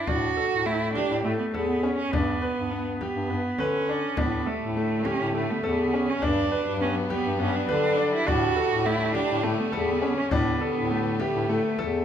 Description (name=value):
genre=contemporary instrumental, chamber music in an uneven meter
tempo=205 BPM (eighths)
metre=7/8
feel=straight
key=unclear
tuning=A4 = 440 Hz
part: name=rich cello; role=melody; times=0.0-12.0 s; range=A3 to F#4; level=-28 LUFS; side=right 6 dB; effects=none
part: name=bright concert grand piano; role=arpeggios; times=0.0-12.0 s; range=A3 to B4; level=-28 LUFS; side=left 2 dB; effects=none
part: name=warm bass clarinet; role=bass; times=0.1-12.0 s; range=E2 to D3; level=-29 LUFS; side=left 2 dB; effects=none
part: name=frame drum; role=percussion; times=0.1-12.0 s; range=none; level=-33 LUFS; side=left 2 dB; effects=none
part: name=clear studio string section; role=sustained chords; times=4.2-12.0 s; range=D3 to B3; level=-33 LUFS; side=left 1 dB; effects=none
room=moderate recital hall reverb, RT60 1.8 s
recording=minimal, uncompressed stereo recording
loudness=-23 LUFS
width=side -9 dB against mid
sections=0.0-12.0 A section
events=none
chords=0.1 A7sus4; 2.1 G; 4.2 A7sus4; 6.2 Gmaj7; 8.3 A7sus4